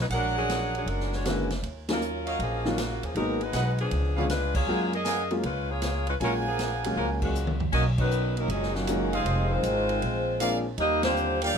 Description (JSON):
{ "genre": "jazz, big band swing", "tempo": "157 BPM", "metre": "4/4", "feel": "swing 66% on 8ths", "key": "F# major", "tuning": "A4 = 440 Hz", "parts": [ { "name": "warm saxophone section", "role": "melody", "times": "0.0-11.6 s", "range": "C#3 to D#5", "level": "-30 LUFS", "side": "left 1 dB", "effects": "none" }, { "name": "upright bass", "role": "bass", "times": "0.0-11.6 s", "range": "F1 to F#2", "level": "-30 LUFS", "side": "equal", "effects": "none" }, { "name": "clear trumpet section", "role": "stabs", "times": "0.1-11.6 s", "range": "F#4 to G#5", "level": "-31 LUFS", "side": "right 2 dB", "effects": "none" }, { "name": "swinging big-band drum kit", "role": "drums", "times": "0.1-11.5 s", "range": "crash cymbal, hi-hat, kick drum, ride cymbal, rim click, snare drum, toms", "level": "-35 LUFS", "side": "right 1 dB", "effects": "none" }, { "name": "clear concert grand piano", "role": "accompaniment", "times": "1.2-10.6 s", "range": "D3 to G#4", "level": "-30 LUFS", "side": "left 1 dB", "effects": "none" }, { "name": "warm trombone section", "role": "second line", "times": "7.0-11.6 s", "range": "A#2 to D#4", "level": "-31 LUFS", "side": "right 1 dB", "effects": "none" } ], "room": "light reverb", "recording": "none", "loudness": "-24 LUFS", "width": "side -7 dB against mid", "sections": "0.0-7.7 A section; 7.7-11.6 B section", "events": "band accent 1.8, 4.5, 7.2, 7.9, 11.0; drum fill 7.3-7.7", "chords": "0.1 A#7alt; 1.6 D#m9; 3.2 G#m7; 3.9 C#7b9; 4.7 F#maj9; 7.7 Bmaj13; 9.3 Fm7; 10.0 A#7; 10.8 D#maj9" }